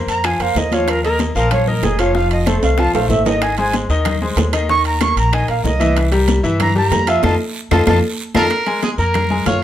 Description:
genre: latin, salsa.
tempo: 189 BPM.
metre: 4/4.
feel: straight.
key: Bb minor.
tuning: A4 = 440 Hz.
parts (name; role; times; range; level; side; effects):
bright grand piano; accompaniment; 0.0-9.6 s; Eb3 to F6; -20 LUFS; left 3 dB; none.
breathy alto recorder; melody; 0.1-8.5 s; Ab4 to Db6; -19 LUFS; right 2 dB; none.
upright bass; bass; 0.1-9.6 s; F1 to G2; -19 LUFS; equal; none.
bongos; percussion; 0.1-9.6 s; none; -26 LUFS; left 6 dB; none.
congas; percussion; 0.1-9.6 s; none; -24 LUFS; equal; none.
guiro; percussion; 0.1-9.6 s; none; -32 LUFS; right 5 dB; none.
timbales; percussion; 0.1-9.6 s; none; -25 LUFS; right 6 dB; none.
claves; percussion; 0.2-9.3 s; none; -29 LUFS; right 4 dB; none.
bright trumpet; melody; 8.4-9.6 s; Ab4 to Db5; -20 LUFS; right 2 dB; none.
room: moderate studio reverb, RT60 0.6 s.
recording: none.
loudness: -14 LUFS.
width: side -11 dB against mid.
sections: 0.0-8.5 A section; 8.5-9.6 B section.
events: recorder solo 0.0-8.5; drum fill 2.6-3.4, 7.6-8.5; band accent 7.2-8.5.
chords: 0.0 Bbsus2/F; 0.9 Ebsus2; 2.2 F7; 3.4 Ab; 4.7 Eb5; 6.0 C7; 7.2 F7; 8.5 Bb5.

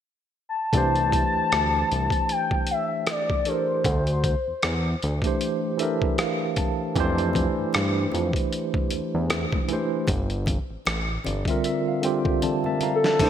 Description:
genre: R&B, neo-soul.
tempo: 77 BPM.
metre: 4/4.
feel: swing 57% on 16ths.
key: G dorian.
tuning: A4 = 441 Hz.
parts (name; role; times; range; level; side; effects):
gliding portamento lead; melody; 0.5-5.0, 13.0-13.3 s; A4 to A5; -24 LUFS; left 2 dB; chorus.
tine electric piano; accompaniment; 0.7-13.3 s; D3 to Bb5; -26 LUFS; right 2 dB; medium stereo tremolo.
fat analog bass; bass; 0.7-13.3 s; G1 to G2; -26 LUFS; equal; none.
boom bap sampler-style drum kit; drums; 0.7-13.3 s; crash cymbal, hi-hat, kick drum, rim click, snare drum; -26 LUFS; equal; gated reverb.
congas; percussion; 7.0-13.3 s; none; -38 LUFS; left 3 dB; none.
clear woodwind section; sustained chords; 13.2-13.3 s; Bb2 to D4; -27 LUFS; right 2 dB; none.
room: moderate lush hall reverb, RT60 2.0 s.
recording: bright 1980s-style digital production.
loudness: -22 LUFS.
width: side -9 dB against mid.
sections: 0.7-13.2 A section.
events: tine electric piano fill 5.4-7.0, 10.9-13.2; drum fill 12.4-13.2.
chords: 0.0 N.C.; 0.7 Cadd9; 3.8 Bbmaj9/D; 7.0 F69; 10.1 Gm9.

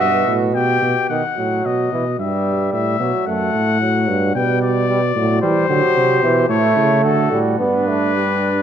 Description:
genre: classical, imitative canzona for brass ensemble.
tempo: 111 BPM.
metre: 4/4.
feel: straight.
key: G major from 5.4 s.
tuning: A4 = 440 Hz.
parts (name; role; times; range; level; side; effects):
warm trumpet; melody; 0.0-8.6 s; A4 to G5; -20 LUFS; left 8 dB; none.
mellow flugelhorn; second line; 0.0-1.1, 5.4-8.6 s; D4 to G4; -22 LUFS; right 5 dB; none.
clear trombone; accompaniment; 0.0-8.5 s; B2 to B3; -20 LUFS; right 2 dB; none.
warm tuba; bass; 0.0-8.6 s; F#2 to E3; -20 LUFS; right 2 dB; none.
room: moderate concert hall reverb, RT60 2.2 s.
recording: none.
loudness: -15 LUFS.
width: side -9 dB against mid.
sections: 0.0-1.1 A section; 1.1-8.6 B section.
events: none.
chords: 0.0 Em/G; 1.1 B; 2.2 Em/G; 3.3 F#m; 4.4 G/B; 5.4 C; 6.5 A; 7.0 D; 7.6 G.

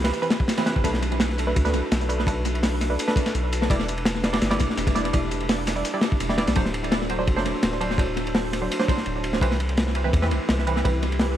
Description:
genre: drum and bass, jungle.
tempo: 168 BPM.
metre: 4/4.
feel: straight.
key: unclear.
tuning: A4 = 439 Hz.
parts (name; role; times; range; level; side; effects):
warbly tape-like pad; sustained chords; 0.0-11.4 s; C4 to C5; -32 LUFS; equal; chorus, built-in reverb.
filtered dub chord stab; stabs; 0.0-11.0 s; E3 to D5; -28 LUFS; right 2 dB; chorus, tape echo.
soft dub sub bass; bass; 0.0-11.4 s; D1 to E2; -27 LUFS; equal; tube saturation.
crunchy breakbeat drum kit; drums; 0.0-11.3 s; hi-hat, kick drum, ride cymbal, snare drum; -24 LUFS; equal; tape echo.
dusty soul sampler-style drum kit; drums; 0.1-6.6 s; hi-hat, snare drum; -37 LUFS; left 2 dB; high-pass filter on hats, high-pass filter on snare, tape echo.
room: moderate spring reverb, RT60 1.5 s, small room ambience.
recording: echo-heavy mix, vinyl crackle.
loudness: -21 LUFS.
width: side -11 dB against mid.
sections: 0.0-6.6 A section; 6.6-11.4 A section.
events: drop 0.0-6.6, 6.6-11.4.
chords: 0.0 Cmaj7; 0.8 Bm7; 3.7 Em7; 6.6 D7; 9.4 Cmaj7.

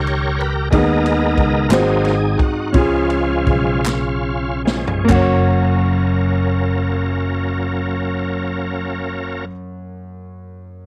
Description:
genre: slow gospel.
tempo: 46-62 BPM (dotted quarters).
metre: 6/8.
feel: straight.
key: F# major.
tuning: A4 = 435 Hz.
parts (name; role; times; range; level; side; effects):
warm grand piano; accompaniment; 0.0-10.9 s; F#2 to C#5; -22 LUFS; equal; cassette tape.
bright tonewheel organ; sustained chords; 0.0-9.5 s; E#3 to C#5; -24 LUFS; equal; slow rotary speaker, overdrive, chorus vibrato, cassette tape.
fingered electric bass; bass; 0.0-9.5 s; F#1 to D#2; -23 LUFS; equal; none.
swinging big-band drum kit; drums; 0.1-5.3 s; crash cymbal, kick drum, ride cymbal, snare drum, toms; -22 LUFS; equal; cassette tape.
group handclap; percussion; 1.7-5.5 s; none; -27 LUFS; equal; none.
room: little or no reverb.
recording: home recording on cassette.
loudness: -18 LUFS.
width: mono.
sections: 0.0-5.1 A section; 5.1-10.3 B section.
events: tonewheel organ solo 0.0-5.1; slowing down 0.7-5.1; drum fill 3.9-5.1.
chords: 0.0 D#; 0.7 G#m/D#; 1.7 G#7; 2.8 C#; 5.1 F#.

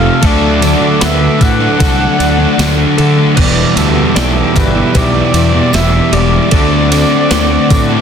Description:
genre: rock, shoegaze and dream pop.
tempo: 76 BPM.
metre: 4/4.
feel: straight.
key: D mixolydian.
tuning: A4 = 440 Hz.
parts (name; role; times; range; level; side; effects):
warm flugelhorn; melody; 0.0-8.0 s; A4 to F#5; -18 LUFS; right 1 dB; slapback echo.
warm analog pad; sustained chords; 0.0-8.0 s; C4 to E6; -22 LUFS; right 1 dB; chorus.
direct-recorded clean electric guitar; arpeggios; 0.0-8.0 s; F4 to D5; -23 LUFS; left 7 dB; analog chorus, slapback echo.
crunchy overdriven guitar; riff; 0.0-8.0 s; C3 to F#4; -17 LUFS; right 14 dB; reverse reverb.
crunchy overdriven guitar; riff; 0.0-8.0 s; E2 to D4; -18 LUFS; equal; none.
thick fuzz guitar; riff; 0.0-8.0 s; E2 to D4; -16 LUFS; left 10 dB; distortion, wide subtle chorus.
fuzz fingered electric bass; bass; 0.0-8.0 s; E1 to D3; -14 LUFS; equal; overdrive.
gated 80s digital drum machine; drums; 0.2-7.9 s; crash cymbal, kick drum, ride cymbal, snare drum; -16 LUFS; right 1 dB; gated reverb, gated reverb snare.
tambourine; percussion; 0.2-7.9 s; none; -30 LUFS; right 6 dB; none.
room: digital ambience.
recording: dense, heavily limited modern master.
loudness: -8 LUFS.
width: side -7 dB against mid.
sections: 0.0-8.0 A section.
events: none.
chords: 0.2 D; 3.4 Em7; 6.5 D7.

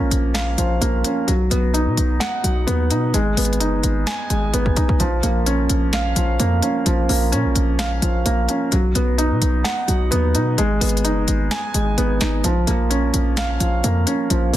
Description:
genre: hip hop, trap.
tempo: 129 BPM.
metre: 4/4.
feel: half-time.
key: Bb phrygian.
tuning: A4 = 439 Hz.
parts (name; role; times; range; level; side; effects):
felt-muted upright piano; accompaniment; 0.0-14.6 s; F3 to Ab5; -20 LUFS; right 1 dB; none.
hard-hitting 808-style bass; bass; 0.0-14.6 s; Gb1 to B2; -20 LUFS; equal; none.
trap drum kit; drums; 0.1-14.6 s; hi-hat, kick drum, snare drum; -23 LUFS; left 1 dB; none.
room: digital ambience.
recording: dense, heavily limited modern master, lossy compression artefacts.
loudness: -17 LUFS.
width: side -13 dB against mid.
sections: 0.0-5.0 A section; 5.0-14.6 B section.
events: drum fill 4.5-5.0.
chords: 0.0 Bbm; 1.3 B; 3.1 Abm; 5.0 Bbm; 8.7 B; 10.6 Abm; 12.4 Bbm.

